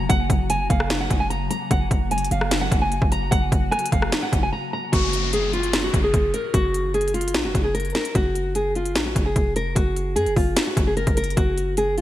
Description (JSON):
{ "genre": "hip hop, trap", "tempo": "149 BPM", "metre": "4/4", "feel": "half-time", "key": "F# major", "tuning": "A4 = 441 Hz", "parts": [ { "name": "nylon-string guitar", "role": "melody", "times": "0.0-12.0 s", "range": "E#4 to A#5", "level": "-24 LUFS", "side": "equal", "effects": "low-pass filter, digital delay" }, { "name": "granular cloud pad", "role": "sustained chords", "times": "0.0-4.9 s", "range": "C#3 to F#4", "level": "-32 LUFS", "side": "left 2 dB", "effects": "built-in reverb" }, { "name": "hard-hitting 808-style bass", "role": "bass", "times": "0.0-12.0 s", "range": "E#1 to F#2", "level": "-26 LUFS", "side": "equal", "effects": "none" }, { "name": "trap drum kit", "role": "drums", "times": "0.1-12.0 s", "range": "hi-hat, kick drum, rim click, snare drum", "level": "-22 LUFS", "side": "equal", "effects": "gated reverb" }, { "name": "downlifter", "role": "sound effects", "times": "4.9-8.2 s", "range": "none", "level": "-30 LUFS", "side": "left 2 dB", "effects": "none" } ], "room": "light reverb", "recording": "bright 1980s-style digital production", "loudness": "-19 LUFS", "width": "side -13 dB against mid", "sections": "0.0-4.9 A section; 4.9-12.0 B section", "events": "break 4.5-4.9", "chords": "0.0 F#; 4.9 N.C.", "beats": "| 0.10 0.50 0.90 1.30 | 1.71 2.11 2.51 2.92 | 3.32 3.72 4.12 4.53 | 4.93 5.33 5.73 6.14 | 6.54 6.94 7.34 7.75 | 8.15 8.55 8.96 9.36 | 9.76 10.16 10.57 10.97 | 11.37 11.78" }